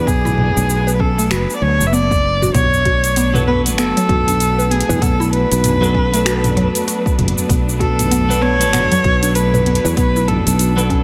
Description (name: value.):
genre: organic downtempo.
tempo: 97 BPM.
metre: 4/4.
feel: swing 60% on 16ths.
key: B minor.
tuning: A4 = 438 Hz.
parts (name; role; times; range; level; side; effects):
rich kamancheh; melody; 0.0-11.0 s; G#4 to E5; -21 LUFS; equal; digital delay.
warm symphonic string section; sustained chords; 0.0-11.0 s; F#3 to B4; -28 LUFS; equal; sidechain pumping.
fretless electric bass; bass; 0.0-11.0 s; F#1 to E2; -20 LUFS; equal; analog chorus.
quartz singing bowl; texture; 0.0-2.6 s; none; barely audible; none; none.
mallet-like synth pluck; arpeggios; 0.1-11.0 s; F#3 to B4; -24 LUFS; equal; chorus, phaser, cassette tape.
deep house drum kit; drums; 0.1-11.0 s; cabasa, finger snaps, hi-hat, toms; -23 LUFS; equal; overdrive.
electronic kick drum; drums; 0.1-11.0 s; none; -21 LUFS; equal; overdrive.
twelve-string electric guitar; accompaniment; 3.3-11.0 s; F#3 to A4; -26 LUFS; equal; sidechain pumping.
room: light reverb.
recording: none.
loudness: -15 LUFS.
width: mono.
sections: 0.0-2.5 A section; 2.5-11.0 B section.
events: none.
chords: 0.0 Bm7.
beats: | 0.07 0.69 1.31 1.93 | 2.55 3.17 3.78 4.40 | 5.02 5.64 6.26 6.88 | 7.50 8.11 8.73 9.35 | 9.97 10.59.